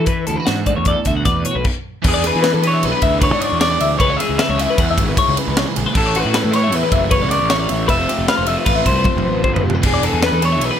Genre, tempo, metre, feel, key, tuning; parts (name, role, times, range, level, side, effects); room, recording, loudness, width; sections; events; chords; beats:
math rock and midwest emo; 154 BPM; 5/4; straight; A4 = 440 Hz
twelve-string electric guitar; accompaniment; 0.0-1.7 s; B2 to B4; -23 LUFS; right 11 dB; lush chorus
twelve-string electric guitar; arpeggios; 0.0-10.8 s; F#4 to F#5; -21 LUFS; left 6 dB; phaser
fuzz picked electric bass; bass; 0.0-10.7 s; E1 to E3; -21 LUFS; equal; overdrive
crisp fusion drum kit; drums; 0.1-10.7 s; crash cymbal, hi-hat, kick drum, ride cymbal, snare drum, toms; -19 LUFS; equal
overdriven electric guitar; riff; 2.0-10.8 s; A2 to G#4; -23 LUFS; right 2 dB
electric guitar through a small old amp; melody; 2.1-10.8 s; G#4 to F5; -20 LUFS; left 1 dB
light reverb; -14 LUFS; side -9 dB against mid
0.0-2.0 A section; 2.0-10.8 B section
stop 1.7-2.0; drum fill 9.1-9.8
0.0 E9sus4; 2.0 E7; 4.0 C#m7; 5.9 A69; 7.9 Fmaj9#11; 9.8 E7
| 0.08 0.47 0.87 1.26 1.65 | 2.04 2.44 2.83 3.22 3.61 | 4.00 4.39 4.78 5.17 5.56 | 5.95 6.34 6.73 7.12 7.51 | 7.89 8.28 8.67 9.06 9.45 | 9.84 10.23 10.62